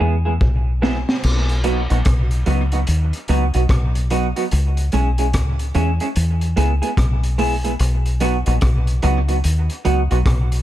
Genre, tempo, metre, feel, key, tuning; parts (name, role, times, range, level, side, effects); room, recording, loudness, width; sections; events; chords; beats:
dub reggae; 73 BPM; 4/4; swing 62% on 16ths; B major; A4 = 440 Hz
clean electric guitar; accompaniment; 0.0-10.2 s; F#3 to G#4; -22 LUFS; right 3 dB; wide subtle chorus, dub echo
deep dub fingered electric bass; bass; 0.0-10.6 s; A#1 to E2; -17 LUFS; equal
crunchy breakbeat drum kit; drums; 0.4-10.6 s; crash cymbal, hi-hat, kick drum, rim click, snare drum; -23 LUFS; equal
small room reverb; -16 LUFS; side -13 dB against mid
0.0-1.2 A section; 1.2-10.6 B section
drum fill 0.0-1.2
0.0 E; 1.2 B; 4.5 C#m; 7.8 B
0.41 | 1.23 2.05 2.87 3.69 | 4.51 5.33 6.15 6.97 | 7.79 8.62 9.44 10.26